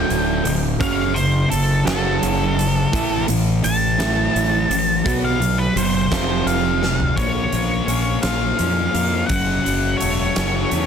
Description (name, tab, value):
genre	quiet-loud alternative rock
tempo	57 BPM (dotted quarters)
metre	6/8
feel	straight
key	unclear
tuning	A4 = 442 Hz
part	octave-fuzz lead guitar	melody	0.0-10.9 s	A4 to A5	-23 LUFS	left 1 dB	distortion, digital delay
part	twangy electric guitar	arpeggios	0.0-10.9 s	D2 to F4	-27 LUFS	right 6 dB	none
part	sludgy distorted guitar	riff	0.0-7.1 s	D2 to B3	-24 LUFS	right 11 dB	overdrive
part	thick fuzz guitar	riff	0.0-10.9 s	D2 to B3	-23 LUFS	left 8 dB	distortion
part	fuzz fingered electric bass	bass	0.0-10.9 s	D1 to F2	-24 LUFS	equal	overdrive
part	huge arena drum kit	drums	0.1-10.9 s	hi-hat, kick drum, snare drum, toms	-24 LUFS	right 1 dB	none
room	light reverb, small room ambience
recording	dense, heavily limited modern master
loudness	-16 LUFS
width	side -7 dB against mid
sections	0.0-7.2 A section; 7.2-10.9 B section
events	lead electric guitar solo 0.0-7.2; drum fill 6.8-7.2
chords	0.0 D5; 0.8 F#m; 2.9 A5; 5.1 B5; 6.1 F5; 7.2 Bbm; 9.3 F#m